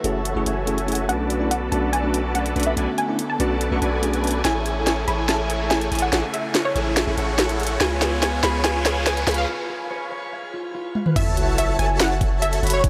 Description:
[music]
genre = future bass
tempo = 143 BPM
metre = 4/4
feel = half-time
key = F# minor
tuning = A4 = 440 Hz
[part]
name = unison pluck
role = melody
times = 0.0-12.9 s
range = B4 to B5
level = -30 LUFS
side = equal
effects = sidechain pumping, tape echo
[part]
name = bell-like tine electric piano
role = accompaniment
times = 0.0-4.3 s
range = A3 to G#4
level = -29 LUFS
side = equal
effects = sidechain pumping, tape echo
[part]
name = dark chamber string section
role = sustained chords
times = 0.0-9.5 s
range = C#3 to G#5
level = -35 LUFS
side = equal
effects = sidechain pumping
[part]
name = dense compressed supersaw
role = riff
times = 0.0-12.9 s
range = E4 to C#6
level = -29 LUFS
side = equal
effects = sidechain pumping, low-pass filter
[part]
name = long sustained 808-style bass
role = bass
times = 0.0-12.9 s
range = F#1 to C#2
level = -28 LUFS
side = equal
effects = sidechain pumping
[part]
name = trap drum kit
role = drums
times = 0.0-12.9 s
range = crash cymbal, hi-hat, snare drum, toms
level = -27 LUFS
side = equal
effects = overdrive
[part]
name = riser and sub drop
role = sound effects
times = 1.7-12.8 s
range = none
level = -36 LUFS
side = equal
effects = none
[part]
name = concert harp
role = arpeggios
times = 4.4-12.9 s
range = E4 to E#5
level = -34 LUFS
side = equal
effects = sidechain pumping, tape echo
[part]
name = airy dreamy lead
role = arpeggios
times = 11.2-12.9 s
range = G#5 to B5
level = -35 LUFS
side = equal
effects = chorus, sidechain pumping
[part]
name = electronic kick drum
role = drums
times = 11.2-12.9 s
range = none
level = -23 LUFS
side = equal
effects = overdrive
[sound]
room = moderate shimmer reverb, RT60 3.7 s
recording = none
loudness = -22 LUFS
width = mono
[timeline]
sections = 0.0-11.2 A section; 11.2-12.9 B section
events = build-up 0.0-11.2; filter sweep on supersaw synth 0.0-11.2; filter sweep on synth pluck 0.0-11.2; riser 1.7-9.5; drum fill 4.4-9.5, 11.0; break 9.5-11.2; drop 11.2-12.9; impact 11.2-12.8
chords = 0.0 F#m7; 1.1 Bm7; 4.4 Amaj7; 7.8 C#7; 11.2 F#m7

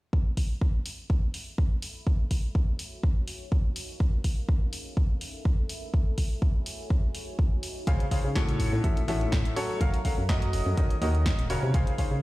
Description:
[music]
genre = piano house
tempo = 124 BPM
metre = 4/4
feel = swing 54% on 16ths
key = unclear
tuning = A4 = 440 Hz
[part]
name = electronic kick drum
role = drums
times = 0.1-12.1 s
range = none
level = -25 LUFS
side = equal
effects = none
[part]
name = deep dark ambient pad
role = texture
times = 0.6-12.2 s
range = Db4 to Ab5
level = -42 LUFS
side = left 2 dB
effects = chorus, built-in reverb, sidechain pumping
[part]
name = punchy analog drum machine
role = drums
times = 0.4-12.1 s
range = hi-hat, snare drum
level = -37 LUFS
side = equal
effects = none
[part]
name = clear grand piano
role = riff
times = 7.9-12.1 s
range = A2 to F5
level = -30 LUFS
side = left 1 dB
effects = sidechain pumping, ping-pong delay
[part]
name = solid FM bass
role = bass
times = 7.9-12.2 s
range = Eb1 to Db3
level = -28 LUFS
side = equal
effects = sidechain pumping
[sound]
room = little or no reverb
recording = played on a big sound system in a bare room, stone room reverb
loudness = -25 LUFS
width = side -19 dB against mid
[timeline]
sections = 0.1-12.2 A section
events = fade-in on ambient pad 0.1-12.2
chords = 0.1 Db5; 0.9 A; 2.1 Gb5; 3.0 Ebm7; 4.0 Db; 4.7 A; 5.9 Gb5; 6.9 Ebm7; 7.9 Dbmaj7; 8.6 A6; 9.8 Gbmaj7; 10.8 Ebm7

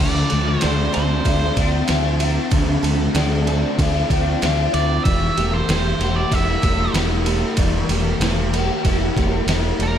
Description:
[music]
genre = rock, shoegaze and dream pop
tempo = 95 BPM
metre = 4/4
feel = straight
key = D minor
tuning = A4 = 439 Hz
[part]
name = octave-fuzz lead guitar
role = melody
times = 0.0-10.0 s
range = Bb4 to E5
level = -25 LUFS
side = right 3 dB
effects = distortion, analog delay
[part]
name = picked twelve-string acoustic guitar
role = arpeggios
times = 0.0-10.0 s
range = F3 to A4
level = -27 LUFS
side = right 10 dB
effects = analog chorus, analog delay
[part]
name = overdriven semi-hollow guitar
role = riff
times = 0.0-10.0 s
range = D3 to A4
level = -22 LUFS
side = left 4 dB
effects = ensemble chorus
[part]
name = twangy electric guitar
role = riff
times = 0.0-10.0 s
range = none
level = barely audible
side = none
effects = none
[part]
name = growling fingered electric bass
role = bass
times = 0.0-10.0 s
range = E1 to D2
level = -21 LUFS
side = equal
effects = overdrive
[part]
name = detuned 8-bit digital drum machine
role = drums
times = 0.3-9.9 s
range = kick drum, ride cymbal, snare drum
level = -23 LUFS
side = right 1 dB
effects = none
[sound]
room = moderate lush hall reverb, RT60 2.9 s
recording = dreamy mix soaked in reverb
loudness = -16 LUFS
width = side -9 dB against mid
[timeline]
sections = 0.0-10.0 A section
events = none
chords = 0.0 Dm7; 5.1 Edim

